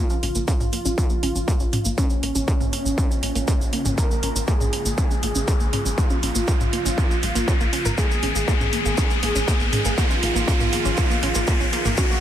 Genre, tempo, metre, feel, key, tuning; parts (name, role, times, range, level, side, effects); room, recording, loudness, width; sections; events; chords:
melodic techno; 120 BPM; 4/4; straight; Bb phrygian; A4 = 439 Hz
wide unison lead; melody; 0.0-12.2 s; Db4 to Bb4; -28 LUFS; right 1 dB; sidechain pumping, digital delay
lush unison pad; sustained chords; 0.0-12.2 s; Db3 to Ab4; -34 LUFS; equal; chorus, sidechain pumping
wide unison pluck; arpeggios; 0.0-12.2 s; Ab3 to Bb4; -30 LUFS; right 1 dB; sidechain pumping, tape echo
riser; sound effects; 1.4-12.2 s; -28 LUFS; left 1 dB
cabasa; percussion; 0.1-12.2 s; -31 LUFS; right 2 dB
tight sequencer bass; bass; 0.2-12.0 s; Bb1; -27 LUFS; equal; sidechain pumping
techno drum kit; drums; 0.2-12.0 s; hi-hat, toms; -27 LUFS; equal; overdrive
electronic kick drum; drums; 0.5-12.1 s; -21 LUFS; equal; distortion, overdrive
little or no reverb; -19 LUFS; side -11 dB against mid
0.0-12.2 A section
build-up 0.0-12.2; filter sweep on synth arpeggio sound 0.0-12.2; filter sweep on analog synth pad 0.0-12.2; riser 1.4-12.2; drum fill 8.0-12.2
0.0 Bbm; 8.0 Abm/Bb